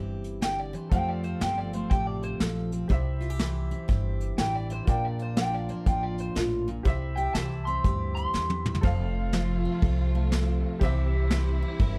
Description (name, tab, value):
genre	honky-tonk and classic country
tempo	121 BPM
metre	4/4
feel	swing 64% on 8ths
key	F major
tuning	A4 = 440 Hz
part	picked steel-string acoustic guitar	accompaniment	0.0-12.0 s	F2 to Bb4	-35 LUFS	equal	none
part	upright bass	bass	0.0-12.0 s	F1 to F2	-32 LUFS	equal	none
part	vintage brush drum kit	drums	0.2-11.9 s	hi-hat, kick drum, snare drum, toms	-29 LUFS	equal	none
part	electric guitar through a small old amp	second line	0.4-8.8 s	F4 to C6	-34 LUFS	equal	tape echo
part	dark upright piano	accompaniment	0.9-12.0 s	F4 to F5	-42 LUFS	equal	none
part	warm studio string section	sustained chords	8.8-12.0 s	C3 to F4	-41 LUFS	equal	none
room	little or no reverb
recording	close, detailed microphones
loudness	-28 LUFS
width	mono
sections	0.0-8.8 A section; 8.8-12.0 B section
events	clean electric guitar solo 0.0-8.8; drum fill 8.3-8.8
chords	0.0 C; 0.9 Fadd9; 2.9 C; 4.9 Bb; 6.9 C; 8.8 F; 10.8 C